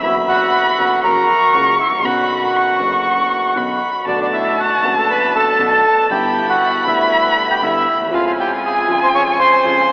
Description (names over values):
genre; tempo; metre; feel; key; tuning
tango; 118 BPM; 4/4; rubato; B minor; A4 = 440 Hz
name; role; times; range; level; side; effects
bandoneon; melody; 0.0-9.9 s; D4 to C#6; -15 LUFS; equal; tape echo
warm violin; second line; 0.0-9.9 s; G#5 to C#6; -17 LUFS; equal; none
dark concert grand piano; accompaniment; 0.0-9.9 s; F#1 to F#4; -23 LUFS; left 1 dB; none
upright bass; bass; 0.0-9.9 s; F#1 to E#2; -33 LUFS; equal; none
warm symphonic string section; stabs; 4.1-9.9 s; G3 to E#4; -28 LUFS; equal; none
room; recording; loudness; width
wet cathedral reverb, RT60 6.0 s; in a vast, echoing space, telephone sound; -12 LUFS; side -24 dB against mid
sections
0.0-9.9 A section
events
none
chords
0.0 Bm/F#; 1.0 F#; 2.0 Bmadd9; 4.1 Bm7; 6.1 G6; 8.1 C#/E#